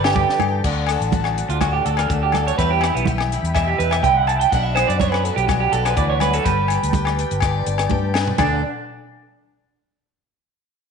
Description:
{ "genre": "highlife guitar band", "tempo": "124 BPM", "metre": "4/4", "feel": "straight", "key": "D major", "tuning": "A4 = 439 Hz", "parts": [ { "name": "picked steel-string acoustic guitar", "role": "accompaniment", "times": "0.0-8.6 s", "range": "A2 to D5", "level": "-28 LUFS", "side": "left 11 dB", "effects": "none" }, { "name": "percussive tonewheel organ", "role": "sustained chords", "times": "0.0-8.6 s", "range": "A4 to B5", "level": "-29 LUFS", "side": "left 1 dB", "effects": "chorus vibrato, slow rotary speaker" }, { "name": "electric guitar through a small old amp", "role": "arpeggios", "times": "0.0-8.6 s", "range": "B3 to A5", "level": "-20 LUFS", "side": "right 8 dB", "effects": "slapback echo" }, { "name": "fingered electric bass", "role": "bass", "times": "0.0-8.6 s", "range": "G1 to G2", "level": "-22 LUFS", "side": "left 1 dB", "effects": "none" }, { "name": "compact cocktail drum kit", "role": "drums", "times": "0.0-8.5 s", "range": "crash cymbal, hi-hat, kick drum, rim click, snare drum, toms", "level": "-26 LUFS", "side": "left 1 dB", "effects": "none" }, { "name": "agogo bells", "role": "percussion", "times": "0.0-8.5 s", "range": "none", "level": "-26 LUFS", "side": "left 11 dB", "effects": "none" }, { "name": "congas", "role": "percussion", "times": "0.2-8.6 s", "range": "none", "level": "-27 LUFS", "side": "right 8 dB", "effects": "none" } ], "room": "moderate echo chamber reverb, RT60 1.3 s, studio ambience", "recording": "1960s-style stereo with parts hard left and right, nothing above 10.7 kHz", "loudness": "-17 LUFS", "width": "side -6 dB against mid", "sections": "0.7-8.4 A section; 8.4-10.3 B section", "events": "clean electric guitar solo 0.7-8.4; drum fill 7.9-8.4", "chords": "0.0 Gadd9; 0.7 D; 2.6 Em; 6.5 Gadd9; 8.4 D5" }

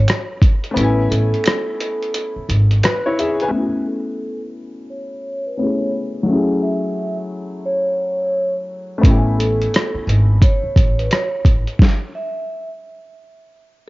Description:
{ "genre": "lo-fi hip hop", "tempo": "87 BPM", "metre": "4/4", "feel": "swing 64% on 16ths", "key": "A major", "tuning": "A4 = 437 Hz", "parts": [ { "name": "vibraphone with medium mallets", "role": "melody", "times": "0.0-12.7 s", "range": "A4 to E5", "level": "-24 LUFS", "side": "right 1 dB", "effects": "low-pass filter, cassette tape, analog delay" }, { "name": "clear upright piano", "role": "accompaniment", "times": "0.0-11.8 s", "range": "F#3 to G#5", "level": "-21 LUFS", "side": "left 2 dB", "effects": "low-pass filter, cassette tape" }, { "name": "upright bass", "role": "bass", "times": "0.0-2.8, 9.0-11.6 s", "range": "G#1 to A1", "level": "-17 LUFS", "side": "equal", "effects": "none" }, { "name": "lo-fi sampler-style drum kit", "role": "drums", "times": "0.1-3.5, 9.0-12.0 s", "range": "hi-hat, kick drum, rim click, snare drum", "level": "-14 LUFS", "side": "equal", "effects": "cassette tape" }, { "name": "finger snap", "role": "percussion", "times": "0.1-3.0 s", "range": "none", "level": "-31 LUFS", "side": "right 4 dB", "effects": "none" } ], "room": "light reverb", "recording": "home recording on cassette, nothing above 7.5 kHz", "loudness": "-15 LUFS", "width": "side -20 dB against mid", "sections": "0.0-3.5 A section; 3.5-13.9 B section", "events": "kick muted 0.8-3.5; filter sweep 3.5-13.9; stop 11.8-13.9", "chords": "0.0 Amaj9; 3.5 Amaj7; 6.3 F#m9; 9.0 Amaj7; 11.8 N.C." }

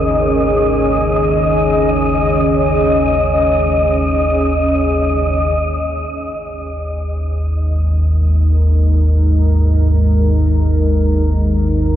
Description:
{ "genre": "dark ambient drone", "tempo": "free time", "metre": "none", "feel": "none", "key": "unclear", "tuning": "A4 = 439 Hz", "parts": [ { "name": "deep dark ambient pad", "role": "sustained chords", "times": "0.0-12.0 s", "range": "G#3 to D#5", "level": "-17 LUFS", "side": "equal", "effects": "chorus, built-in reverb" }, { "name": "deep rumbling drone", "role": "drone", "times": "0.0-12.0 s", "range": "G#1 to D#2", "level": "-15 LUFS", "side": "equal", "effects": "built-in reverb" }, { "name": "wind-like tuned noise texture", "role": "texture", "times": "0.0-5.6 s", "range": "D#5", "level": "-20 LUFS", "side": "equal", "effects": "built-in reverb" } ], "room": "wet huge ambient reverb, RT60 9.4 s", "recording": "worn, warbling old tape, cassette tape, warbly pitch drift", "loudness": "-12 LUFS", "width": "side -11 dB against mid", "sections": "0.0-5.6 A section; 5.6-12.0 B section", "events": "fade-in on ambient pad 5.6-12.0", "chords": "0.0 G#5" }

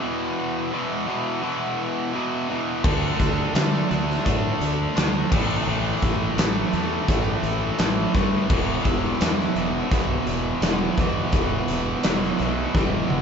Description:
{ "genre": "classic rock", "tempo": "85 BPM", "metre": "4/4", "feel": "straight", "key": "unclear", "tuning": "A4 = 440 Hz", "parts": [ { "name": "overdriven electric guitar", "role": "riff", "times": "0.0-13.2 s", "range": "E2 to D4", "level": "-24 LUFS", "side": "equal", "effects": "none" }, { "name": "fuzz fingered electric bass", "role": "bass", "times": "2.8-13.2 s", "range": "E1 to D3", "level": "-28 LUFS", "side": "equal", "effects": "overdrive" }, { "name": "big rock drum kit", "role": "drums", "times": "2.8-13.2 s", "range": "crash cymbal, hi-hat, kick drum, snare drum, tambourine, toms", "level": "-23 LUFS", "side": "equal", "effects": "none" } ], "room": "moderate studio reverb, RT60 0.7 s", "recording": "band playing live in one room, nothing above 7.6 kHz", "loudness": "-20 LUFS", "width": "side -6 dB against mid", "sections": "0.0-13.2 A section", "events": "drum fill 12.7-13.2", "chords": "0.0 E5; 2.8 D5; 5.3 A5; 8.5 E5" }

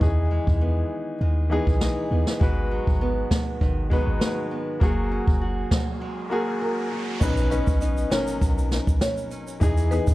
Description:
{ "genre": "dancehall", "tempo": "100 BPM", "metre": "4/4", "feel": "straight", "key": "B major", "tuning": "A4 = 437 Hz", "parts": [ { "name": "clear grand piano", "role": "accompaniment", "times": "0.0-10.1 s", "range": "E3 to B4", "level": "-28 LUFS", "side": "left 2 dB", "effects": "none" }, { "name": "nylon-string guitar", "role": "arpeggios", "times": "0.0-10.1 s", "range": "G#2 to A#4", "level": "-31 LUFS", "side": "right 2 dB", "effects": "none" }, { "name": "clean 808-style bass", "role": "bass", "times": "0.0-10.1 s", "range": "F#1 to E2", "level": "-24 LUFS", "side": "equal", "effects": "none" }, { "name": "jazz brush drum kit", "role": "drums", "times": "0.0-10.1 s", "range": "crash cymbal, hi-hat, kick drum, snare drum", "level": "-23 LUFS", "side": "equal", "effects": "none" }, { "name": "riser and impact", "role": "sound effects", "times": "5.7-9.6 s", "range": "none", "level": "-35 LUFS", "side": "equal", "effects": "none" }, { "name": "tube shaker", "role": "percussion", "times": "7.2-10.1 s", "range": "none", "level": "-45 LUFS", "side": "right 5 dB", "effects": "none" }, { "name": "marimba with medium mallets", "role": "melody", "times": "7.5-10.0 s", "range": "B4 to C#5", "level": "-31 LUFS", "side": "left 1 dB", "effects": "none" } ], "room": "studio reverb", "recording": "worn, warbling old tape, cassette tape, warbly pitch drift", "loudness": "-21 LUFS", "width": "side -17 dB against mid", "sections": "0.0-7.2 A section; 7.2-10.1 B section", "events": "riser 5.7-7.2; break 6.0-7.2; impact 7.2-9.6", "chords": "0.0 Emaj7; 2.4 G#m7; 4.8 F#add9; 7.2 Badd9; 9.6 Emaj7" }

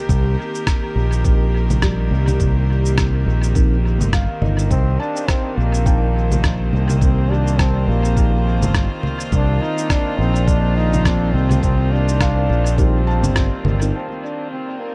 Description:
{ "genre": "ambient dub", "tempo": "104 BPM", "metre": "4/4", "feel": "swing 58% on 16ths", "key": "C dorian", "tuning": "A4 = 440 Hz", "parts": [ { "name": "bright chamber string section", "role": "sustained chords", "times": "0.0-14.9 s", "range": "Eb3 to C5", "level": "-29 LUFS", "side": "equal", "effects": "low-pass filter" }, { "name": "felt-muted upright piano", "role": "arpeggios", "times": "0.0-14.9 s", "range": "G3 to A5", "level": "-34 LUFS", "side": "equal", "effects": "dub echo" }, { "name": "overdriven fingered electric bass", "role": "bass", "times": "0.1-13.9 s", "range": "G1 to C2", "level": "-20 LUFS", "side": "equal", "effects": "none" }, { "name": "electronic cabasa, rim click and congas", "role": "drums", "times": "0.1-13.9 s", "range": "none", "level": "-28 LUFS", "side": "equal", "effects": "low-pass filter on perc, small room ambience, low-pass filter on snare, dub echo" }, { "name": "electronic kick drum", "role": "drums", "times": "0.1-13.5 s", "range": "none", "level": "-21 LUFS", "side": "equal", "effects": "small room ambience" }, { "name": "mellow tine electric piano", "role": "stabs", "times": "1.2-13.9 s", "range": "C4 to Bb4", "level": "-35 LUFS", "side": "equal", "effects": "none" }, { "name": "warm trombone", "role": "melody", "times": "4.7-14.9 s", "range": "Bb3 to Eb4", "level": "-27 LUFS", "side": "equal", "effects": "dub echo" } ], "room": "light reverb, studio ambience", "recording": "dark, warm production", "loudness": "-18 LUFS", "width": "mono", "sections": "0.0-13.9 A section; 13.9-14.9 B section", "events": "none", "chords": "0.0 Cm7" }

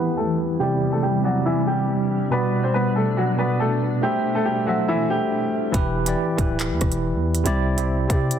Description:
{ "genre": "hip hop, drill", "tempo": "140 BPM", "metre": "4/4", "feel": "half-time", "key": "E minor", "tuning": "A4 = 439 Hz", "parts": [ { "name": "bright upright piano", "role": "melody", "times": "0.0-5.7 s", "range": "E3 to C5", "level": "-24 LUFS", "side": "left 1 dB", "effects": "low-pass filter, tape echo" }, { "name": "tine electric piano", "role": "accompaniment", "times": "0.0-8.4 s", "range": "B2 to E5", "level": "-23 LUFS", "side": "right 1 dB", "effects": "medium stereo tremolo, low-pass filter" }, { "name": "granular cloud pad", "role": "sustained chords", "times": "0.0-5.7 s", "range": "E2 to F#4", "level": "-27 LUFS", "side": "left 2 dB", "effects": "built-in reverb, low-pass filter" }, { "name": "growling 808-style bass", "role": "bass", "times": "5.7-8.3 s", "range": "D1 to C3", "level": "-24 LUFS", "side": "equal", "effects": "none" }, { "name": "drill drum kit", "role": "drums", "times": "5.7-8.4 s", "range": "handclaps, hi-hat, kick drum, rim click", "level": "-24 LUFS", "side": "equal", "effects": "none" } ], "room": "light reverb, digital ambience", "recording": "dense, heavily limited modern master", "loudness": "-19 LUFS", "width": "side -9 dB against mid", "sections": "0.0-5.7 A section; 5.7-8.4 B section", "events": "filter sweep 0.0-5.7", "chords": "0.0 Em; 0.6 Cadd9; 2.3 Bm; 4.0 Am; 5.7 Em; 7.5 Cadd9" }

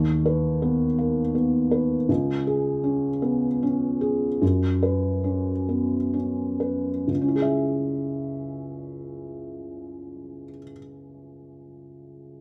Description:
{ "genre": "classical", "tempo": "41-55 BPM (dotted quarters)", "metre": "6/8", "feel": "rubato", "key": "C# minor", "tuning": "A4 = 441 Hz", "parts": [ { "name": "felt-muted upright piano", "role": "accompaniment", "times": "0.0-12.4 s", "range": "C#2 to E5", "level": "-26 LUFS", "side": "equal", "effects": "none" } ], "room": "light reverb", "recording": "none", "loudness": "-24 LUFS", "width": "mono", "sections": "0.0-7.1 A section; 7.1-9.9 B section", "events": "slowing down 1.0-7.1", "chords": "0.0 B/D#; 2.1 C#5; 4.4 F#sus4; 7.1 C#m" }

